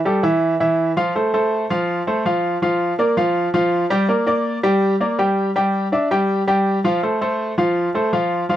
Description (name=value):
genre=latin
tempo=164 BPM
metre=4/4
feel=straight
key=unclear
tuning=A4 = 439 Hz
part: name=bright upright piano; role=solo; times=0.1-8.6 s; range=E3 to G5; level=-16 LUFS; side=equal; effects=none
room=moderate booth ambience, RT60 0.2 s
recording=dry, close 1970s-style studio recording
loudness=-16 LUFS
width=side -12 dB against mid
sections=0.0-1.2 A section; 1.2-8.6 A section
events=none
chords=0.0 A5; 1.2 F; 2.6 Bb5; 4.1 Gm; 5.6 G5; 6.3 Fsus2; 7.0 F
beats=0.05 0.42 0.79 | 1.15 1.52 1.89 2.25 | 2.62 2.99 3.35 3.72 | 4.09 4.46 4.82 5.19 | 5.56 5.92 6.29 6.66 | 7.02 7.39 7.76 8.13 | 8.49